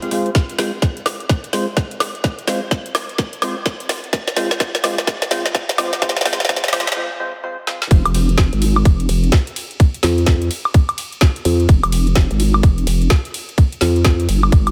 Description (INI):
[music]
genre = bass house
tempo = 127 BPM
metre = 4/4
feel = swing 62% on 16ths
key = F minor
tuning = A4 = 435 Hz
[part]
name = percussive organ stab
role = stabs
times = 0.0-7.8 s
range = Ab3 to F5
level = -27 LUFS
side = equal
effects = lush chorus, sidechain pumping, tape echo
[part]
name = garage drum kit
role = drums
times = 0.0-14.7 s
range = hi-hat, ride cymbal, snare drum, woodblock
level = -23 LUFS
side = equal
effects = small room ambience
[part]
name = electronic kick drum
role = drums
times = 0.3-14.6 s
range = none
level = -15 LUFS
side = equal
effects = small room ambience
[part]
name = vowel-sweep wobble bass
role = bass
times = 7.9-14.7 s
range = F1 to F2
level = -18 LUFS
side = equal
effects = chorus, overdrive, sidechain pumping
[sound]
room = light reverb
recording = high-pass filter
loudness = -17 LUFS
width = mono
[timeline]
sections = 0.0-7.9 A section; 7.9-14.7 B section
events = build-up 0.0-7.9; drum fill 0.0-7.0, 7.7; filter sweep on synth stab 0.0-7.9; filter sweep 0.0-7.9; break 7.0-7.9; drop 7.9-14.7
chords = 0.0 Fm; 7.9 N.C.